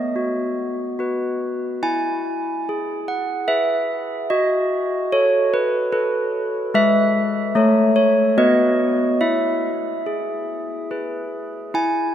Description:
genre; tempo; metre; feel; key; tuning
classical, tune for handbells; 72 BPM; 3/4; straight; E major; A4 = 440 Hz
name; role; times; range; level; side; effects
handbells; solo; 0.0-12.1 s; G#3 to G#5; -18 LUFS; equal; none
room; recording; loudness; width
wet cathedral reverb, RT60 5.7 s; none; -18 LUFS; side -10 dB against mid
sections
0.0-11.7 A section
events
none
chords
0.0 B; 1.8 E; 4.3 B7/F#; 6.7 E/G#; 7.5 A; 8.4 B; 9.2 E

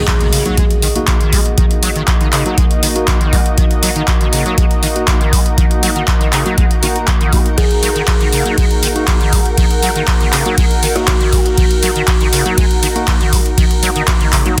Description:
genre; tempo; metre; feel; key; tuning
acid house; 120 BPM; 4/4; straight; Eb minor; A4 = 439 Hz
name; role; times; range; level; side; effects
buzzing kalimba; melody; 0.0-0.3, 7.6-11.2 s; Gb4 to Ab4; -24 LUFS; equal; delay
warm analog pad; sustained chords; 0.0-14.6 s; Bb3 to Eb5; -27 LUFS; equal; chorus, sidechain pumping
liquid acid bass; riff; 0.0-14.6 s; Db3 to Gb4; -23 LUFS; equal; overdrive, ensemble chorus, dub echo
impact; sound effects; 0.0-1.6 s; none; -27 LUFS; equal; none
granular cloud pad; texture; 0.9-14.6 s; Eb4 to Bb5; -26 LUFS; equal; built-in reverb, sidechain pumping
booming analog drum machine; drums; 0.1-14.6 s; handclaps, hi-hat, ride cymbal; -20 LUFS; equal; none
electronic kick drum; drums; 0.1-14.6 s; none; -16 LUFS; equal; none
tine electric piano; stabs; 0.5-14.6 s; Bb3 to Gb4; -26 LUFS; equal; dub echo
room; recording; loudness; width
light reverb, digital ambience; dense, heavily limited modern master; -13 LUFS; mono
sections
0.0-14.6 A section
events
impact 0.0-1.6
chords
0.0 Ebm

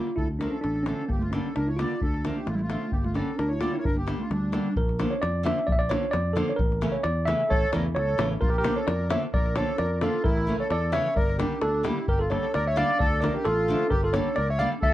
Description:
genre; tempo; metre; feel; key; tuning
balkan folk, Balkan wedding band; 131 BPM; 2/4; straight; G dorian sharp4; A4 = 440 Hz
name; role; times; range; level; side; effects
mellow tine electric piano; melody; 0.0-14.9 s; G3 to F5; -27 LUFS; right 1 dB; none
nylon-string guitar; accompaniment; 0.0-14.7 s; C#3 to D4; -31 LUFS; equal; none
davul; percussion; 0.1-14.9 s; none; -29 LUFS; left 1 dB; none
accordion; second line; 0.2-4.7, 7.5-14.9 s; D4 to D5; -32 LUFS; equal; light tremolo tuning
fingered electric bass; bass; 0.2-14.9 s; G1 to F2; -29 LUFS; equal; none
room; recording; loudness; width
light reverb; worn, warbling old tape, cassette tape, warbly pitch drift; -23 LUFS; side -14 dB against mid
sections
0.0-4.8 A section; 4.8-12.1 B section; 12.1-14.9 A section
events
none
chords
0.2 Dm; 1.1 Gm; 2.0 Dm; 2.9 Gm; 4.8 Bb; 6.6 A; 8.4 Bb; 10.2 A; 11.2 Gm; 13.0 Dm; 13.9 Gm

